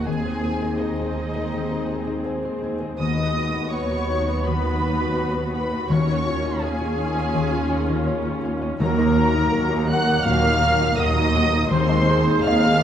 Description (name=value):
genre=cinematic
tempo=82 BPM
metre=4/4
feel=rubato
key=unclear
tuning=A4 = 443 Hz
part: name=muted studio violin section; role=melody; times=0.0-12.8 s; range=Eb5 to Gb6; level=-29 LUFS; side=right 1 dB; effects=none
part: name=large flute ensemble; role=second line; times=0.0-12.8 s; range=Eb4 to Gb5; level=-28 LUFS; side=left 1 dB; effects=none
part: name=muted studio violin section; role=second line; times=0.0-12.8 s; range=Eb4 to Gb5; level=-30 LUFS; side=left 1 dB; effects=none
part: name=felt-muted upright piano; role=accompaniment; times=0.0-12.8 s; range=Eb2 to Eb5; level=-27 LUFS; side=left 3 dB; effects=none
part: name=muted symphonic viola section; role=accompaniment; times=0.0-12.8 s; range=Gb3 to Ab4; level=-30 LUFS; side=right 1 dB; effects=none
part: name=warm French horn section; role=sustained chords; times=0.0-12.8 s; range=Eb3 to Eb4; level=-30 LUFS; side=left 3 dB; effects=none
part: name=concert harp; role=arpeggios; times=0.0-12.8 s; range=Eb3 to Eb6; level=-31 LUFS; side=left 7 dB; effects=none
part: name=muted symphonic cello section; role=bass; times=0.0-12.8 s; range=Eb2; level=-27 LUFS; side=right 2 dB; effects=none
part: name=muted symphonic double bass section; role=bass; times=0.0-12.8 s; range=Eb2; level=-27 LUFS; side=right 3 dB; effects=none
part: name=timpani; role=percussion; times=5.9-12.8 s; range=Eb3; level=-31 LUFS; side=right 2 dB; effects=none
room=moderate scoring stage reverb, RT60 1.9 s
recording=none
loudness=-19 LUFS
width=side -9 dB against mid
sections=0.0-12.8 A section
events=none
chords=0.1 Ab/Eb; 3.0 B/D#; 5.9 Dbadd9/Eb; 8.8 Ebm; 11.7 Ab/Eb